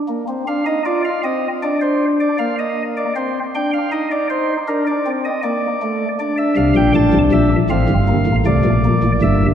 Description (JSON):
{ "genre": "classical, baroque-style 3-part fugue for pipe organ", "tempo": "79 BPM", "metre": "4/4", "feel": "straight", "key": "Bb major", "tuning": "A4 = 440 Hz", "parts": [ { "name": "chamber organ, flutes", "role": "solo", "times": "0.1-9.5 s", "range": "G1 to A5", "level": "-15 LUFS", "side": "equal", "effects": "none" } ], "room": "wet church reverb, RT60 2.7 s", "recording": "none", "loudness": "-15 LUFS", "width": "side -9 dB against mid", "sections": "0.1-9.5 A section", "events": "none", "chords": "0.1 Bb; 3.2 Cmadd9; 4.7 Bb; 6.2 F" }